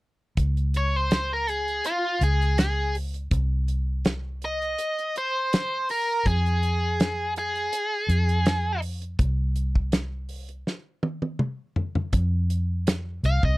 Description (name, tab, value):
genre	straight-eighth soul blues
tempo	82 BPM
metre	4/4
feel	swing 53% on 16ths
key	F minor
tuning	A4 = 440 Hz
part	vintage muted fingered electric bass	bass	0.4-13.6 s	C2 to F2	-25 LUFS	equal	none
part	warm soul drum kit	drums	0.4-13.6 s	hi-hat, kick drum, snare drum, toms	-25 LUFS	equal	none
part	biting lead guitar	melody	0.8-8.8, 13.3-13.6 s	F4 to F5	-25 LUFS	equal	overdrive
room	little or no reverb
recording	dry, close 1970s-style studio recording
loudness	-23 LUFS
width	side -20 dB against mid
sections	0.4-12.1 A section; 12.1-13.6 B section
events	drum fill 10.7-12.1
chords	0.4 Db5; 3.3 Cm; 6.3 Fm; 9.2 N.C.; 12.1 F5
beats	| 0.37 1.11 1.84 2.58 | 3.31 4.04 4.78 5.51 | 6.25 6.99 7.72 8.46 | 9.19 9.93 10.66 11.40 | 12.13 12.87